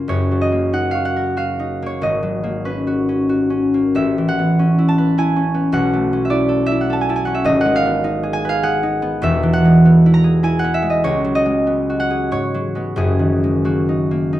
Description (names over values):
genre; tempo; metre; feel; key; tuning
classical, solo harp piece; 84-105 BPM; 3/4; rubato; F# major; A4 = 440 Hz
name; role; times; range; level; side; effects
concert harp; solo; 0.0-14.4 s; E1 to C#6; -14 LUFS; equal; none
room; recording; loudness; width
light reverb; dark, warm production; -14 LUFS; side -14 dB against mid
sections
0.1-14.4 A section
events
none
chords
0.1 F#6; 2.0 G#m11; 3.9 A69; 5.7 Bm11; 7.5 G#m7; 9.2 Eadd9; 11.0 C#9sus4; 12.3 G#m7; 13.0 F#69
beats
| 0.08 0.72 1.36 | 2.00 2.62 3.26 | 3.93 4.56 5.16 | 5.74 6.32 6.89 | 7.46 8.05 8.63 | 9.23 9.85 10.44 | 11.03 11.65 12.29 | 12.96 13.65 14.34